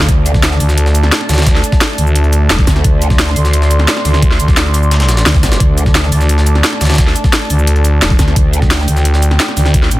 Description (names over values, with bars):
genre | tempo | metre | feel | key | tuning
dark technical drum and bass | 174 BPM | 4/4 | straight | unclear | A4 = 438 Hz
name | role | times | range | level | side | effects
dark analog pad | sustained chords | 0.0-10.0 s | A3 to C6 | -20 LUFS | right 1 dB | chorus, sidechain pumping
growl bass | bass | 0.0-0.6, 2.7-6.1, 8.2-8.9 s | D2 | -13 LUFS | equal | chorus, overdrive
drum and bass drum kit | drums | 0.0-10.0 s | cabasa, hi-hat, snare drum | -16 LUFS | equal | overdrive
electronic kick drum | drums | 0.1-9.8 s | none | -12 LUFS | equal | overdrive
jungle sampler-style drum kit | drums | 0.1-10.0 s | hi-hat, snare drum | -22 LUFS | equal | high-pass filter on hats, high-pass filter on snare
growling FM bass | bass | 0.6-10.0 s | Eb1 to D2 | -11 LUFS | equal | none
room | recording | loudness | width
digital ambience | dense, heavily limited modern master | -9 LUFS | side -17 dB against mid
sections
0.0-10.0 A section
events
none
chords
0.0 D5